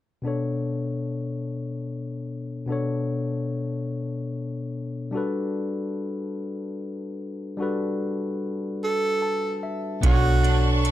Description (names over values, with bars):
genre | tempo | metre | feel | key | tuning
slow six-eight R&B | 49 BPM (dotted quarters) | 6/8 | straight | B minor | A4 = 440 Hz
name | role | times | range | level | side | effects
barky tine electric piano | accompaniment | 0.2-10.9 s | B2 to A5 | -27 LUFS | left 2 dB | none
breathy tenor saxophone | melody | 8.8-10.8 s | F#4 to A4 | -25 LUFS | right 2 dB | none
electric guitar at the edge of break-up | second line | 10.0-10.9 s | B3 to C#5 | -30 LUFS | right 4 dB | ensemble chorus
clear studio string section | sustained chords | 10.0-10.9 s | D4 to C#6 | -30 LUFS | equal | none
vintage muted fingered electric bass | bass | 10.0-10.9 s | B1 | -21 LUFS | right 1 dB | none
booming analog drum machine | drums | 10.0-10.9 s | hi-hat, kick drum | -22 LUFS | right 1 dB | none
room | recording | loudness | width
light reverb | none | -25 LUFS | side -13 dB against mid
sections
0.2-10.0 A section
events
tine electric piano fill 8.8-10.0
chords
0.2 Bm9; 5.1 Gmaj9; 10.0 Bm9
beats
| 0.24 1.46 | 2.69 3.91 | 5.13 6.36 | 7.58 8.81 | 10.03